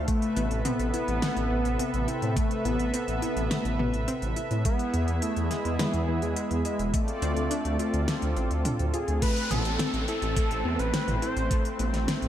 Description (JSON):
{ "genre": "synthwave", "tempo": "105 BPM", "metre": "4/4", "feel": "straight", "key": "A harmonic minor", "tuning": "A4 = 438 Hz", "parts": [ { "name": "wide unison lead", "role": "melody", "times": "0.0-11.8 s", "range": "E3 to C5", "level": "-31 LUFS", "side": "equal", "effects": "ping-pong delay, shimmer reverb" }, { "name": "brassy analog pad", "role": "sustained chords", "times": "0.0-12.3 s", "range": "C3 to E5", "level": "-33 LUFS", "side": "right 2 dB", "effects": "wide subtle chorus, sidechain pumping, shimmer reverb" }, { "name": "wide detuned saw bass", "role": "bass", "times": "0.0-12.3 s", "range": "E1 to A2", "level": "-30 LUFS", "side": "equal", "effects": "chorus, sidechain pumping" }, { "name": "wide unison pluck", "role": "arpeggios", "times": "0.1-12.2 s", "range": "G#3 to G#4", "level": "-35 LUFS", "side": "left 3 dB", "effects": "tape echo, shimmer reverb" }, { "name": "electronic kick drum", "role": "drums", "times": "0.1-11.6 s", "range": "none", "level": "-27 LUFS", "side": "equal", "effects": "studio reverb" }, { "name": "pop drum kit", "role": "drums", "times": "0.1-12.3 s", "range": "crash cymbal, hi-hat, snare drum, toms", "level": "-33 LUFS", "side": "equal", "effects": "studio reverb, gated reverb" }, { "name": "downlifter", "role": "sound effects", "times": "9.2-12.3 s", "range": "none", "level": "-36 LUFS", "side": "equal", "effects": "none" } ], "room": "light reverb", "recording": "none", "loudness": "-25 LUFS", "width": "side -11 dB against mid", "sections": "0.0-9.2 A section; 9.2-12.3 B section", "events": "none", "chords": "0.1 Amadd9; 4.7 E; 6.9 Dm7; 9.2 Amadd9" }